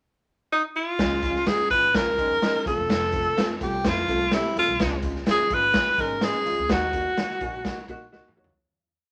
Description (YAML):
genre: uptempo 1960s-style soul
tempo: 126 BPM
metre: 4/4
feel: straight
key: unclear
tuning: A4 = 439 Hz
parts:
  - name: breathy tenor saxophone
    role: melody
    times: 0.5-8.1 s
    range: Eb4 to Cb5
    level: -25 LUFS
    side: equal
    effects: none
  - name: dark upright piano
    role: accompaniment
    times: 1.0-8.6 s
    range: Ab3 to Ab5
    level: -34 LUFS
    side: equal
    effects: none
  - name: upright bass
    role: bass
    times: 1.0-8.6 s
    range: Fb1 to Eb3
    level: -37 LUFS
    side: equal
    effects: none
  - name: raw garage drum kit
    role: drums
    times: 1.0-8.6 s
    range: hi-hat, kick drum, snare drum, toms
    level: -30 LUFS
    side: equal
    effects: none
room: moderate studio reverb, RT60 0.6 s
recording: none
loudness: -24 LUFS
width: mono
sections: 0.0-1.0 pickup bar; 1.0-8.6 verse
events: fade-out 6.7-8.6; upright piano fill 7.2-8.6; drum fill 8.1-8.6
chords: 0.0 N.C.; 1.0 Db; 2.7 F; 4.8 Db; 6.7 Ebm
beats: 0.03 0.51 | 0.99 1.47 1.94 2.42 | 2.90 3.37 3.85 4.32 | 4.80 5.27 5.75 6.22 | 6.70 7.18 7.65 8.13